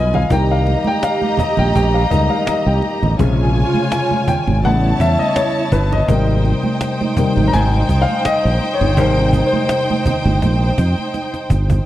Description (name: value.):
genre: lush 1970s-style soul.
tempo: 83 BPM.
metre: 4/4.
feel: swing 54% on 16ths.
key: Ab major.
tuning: A4 = 444 Hz.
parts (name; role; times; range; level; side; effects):
warm studio string section; second line; 0.0-11.8 s; Eb4 to Bb5; -20 LUFS; right 2 dB; none.
warm baby grand piano; accompaniment; 0.0-11.9 s; C3 to Bb5; -19 LUFS; left 3 dB; none.
fingered electric bass; bass; 0.0-11.8 s; G1 to F2; -16 LUFS; equal; none.
congas; percussion; 0.1-11.9 s; none; -23 LUFS; right 4 dB; none.
cajon; drums; 0.3-11.8 s; none; -20 LUFS; right 1 dB; none.
room: little or no reverb.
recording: dry, close 1970s-style studio recording.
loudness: -14 LUFS.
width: side -13 dB against mid.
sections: 0.0-11.9 A section.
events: grand piano solo 0.0-11.9; drum fill 11.1-11.9.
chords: 0.3 Cm7; 3.2 Bbm7; 4.6 A9; 6.1 Abmaj9.